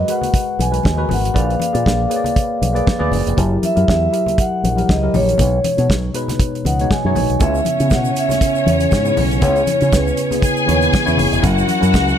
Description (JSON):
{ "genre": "disco", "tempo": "119 BPM", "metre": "4/4", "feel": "swing 56% on 16ths", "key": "unclear", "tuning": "A4 = 440 Hz", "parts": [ { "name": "vibraphone with soft mallets", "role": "melody", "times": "0.0-11.1 s", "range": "B4 to G#5", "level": "-20 LUFS", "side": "equal", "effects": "none" }, { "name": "tine electric piano", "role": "accompaniment", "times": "0.0-12.2 s", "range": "B2 to F#5", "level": "-20 LUFS", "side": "left 1 dB", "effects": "lush chorus" }, { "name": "fingered electric bass with an envelope filter", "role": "bass", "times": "0.0-12.1 s", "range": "E1 to C#3", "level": "-19 LUFS", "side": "equal", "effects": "none" }, { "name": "damped 70s drum kit", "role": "drums", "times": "0.1-12.1 s", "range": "hi-hat, kick drum, snare drum", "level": "-19 LUFS", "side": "equal", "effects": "none" }, { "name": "congas", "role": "percussion", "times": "0.1-12.1 s", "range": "none", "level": "-26 LUFS", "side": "left 5 dB", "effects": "none" }, { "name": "dark studio string section", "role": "second line", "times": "7.4-12.2 s", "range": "C#4 to G#5", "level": "-20 LUFS", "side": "left 1 dB", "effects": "none" }, { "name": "egg shaker", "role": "percussion", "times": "7.4-12.2 s", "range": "none", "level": "-35 LUFS", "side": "right 7 dB", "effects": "none" } ], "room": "light reverb", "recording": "none", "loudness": "-14 LUFS", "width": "side -9 dB against mid", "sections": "0.0-7.4 A section; 7.4-12.2 B section", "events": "tine electric piano fill 6.4-7.4", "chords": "0.0 G#m9; 1.4 A#7b9; 3.4 F#7b9; 5.4 B69; 7.4 C#m7; 11.4 F#7" }